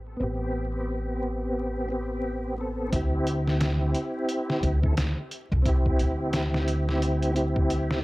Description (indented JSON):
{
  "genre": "trip hop",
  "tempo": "88 BPM",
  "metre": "4/4",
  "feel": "swing 60% on 16ths",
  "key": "unclear",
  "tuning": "A4 = 435 Hz",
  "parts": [
    { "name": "upright bass", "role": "bass", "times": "0.0-8.0 s", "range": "A1 to D2", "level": "-27 LUFS", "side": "equal", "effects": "tube saturation" },
    { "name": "tonewheel organ", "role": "accompaniment", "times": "0.2-8.0 s", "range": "B3 to A4", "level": "-29 LUFS", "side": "equal", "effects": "chorus vibrato, slow rotary speaker, tremolo, tape echo" },
    { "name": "trip hop sampler-style drum kit", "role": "drums", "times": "2.9-8.0 s", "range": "hi-hat, kick drum, snare drum", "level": "-28 LUFS", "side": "equal", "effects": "vintage 12-bit sampler grit" }
  ],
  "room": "little or no reverb",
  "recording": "dry, gritty hardware recording, vinyl crackle, low-pass filter",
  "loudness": "-24 LUFS",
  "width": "side -20 dB against mid",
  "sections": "0.0-2.9 A section; 2.9-8.0 B section",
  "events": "filter sweep 0.0-2.9",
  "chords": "0.0 Am7; 2.9 D7sus4"
}